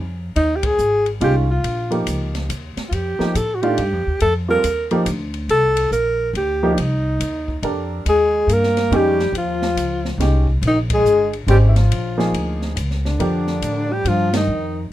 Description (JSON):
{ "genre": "modal jazz", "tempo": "140 BPM", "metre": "3/4", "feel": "swing 64% on 8ths", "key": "unclear", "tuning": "A4 = 440 Hz", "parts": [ { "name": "upright bass", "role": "bass", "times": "0.0-14.9 s", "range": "G1 to A2", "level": "-21 LUFS", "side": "equal", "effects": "none" }, { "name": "breathy alto saxophone", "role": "melody", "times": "0.4-14.9 s", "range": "D4 to Bb4", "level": "-19 LUFS", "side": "equal", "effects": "none" }, { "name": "open jazz drum kit", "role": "drums", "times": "0.4-14.4 s", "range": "hi-hat, kick drum, ride cymbal, snare drum", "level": "-30 LUFS", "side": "equal", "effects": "none" }, { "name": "warm upright piano", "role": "accompaniment", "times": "1.2-14.4 s", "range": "Eb3 to C5", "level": "-21 LUFS", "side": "right 1 dB", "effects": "none" }, { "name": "warm trombone", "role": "second line", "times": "8.1-14.9 s", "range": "D3 to Bb3", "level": "-24 LUFS", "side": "left 5 dB", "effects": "none" } ], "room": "little or no reverb", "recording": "minimal, uncompressed stereo recording", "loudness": "-16 LUFS", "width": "side -14 dB against mid", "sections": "0.0-14.9 A section", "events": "band accent 0.6, 10.8, 14.3", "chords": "0.0 Eb13sus4; 2.9 F13sus4; 8.1 Eb13sus4; 13.2 F13sus4" }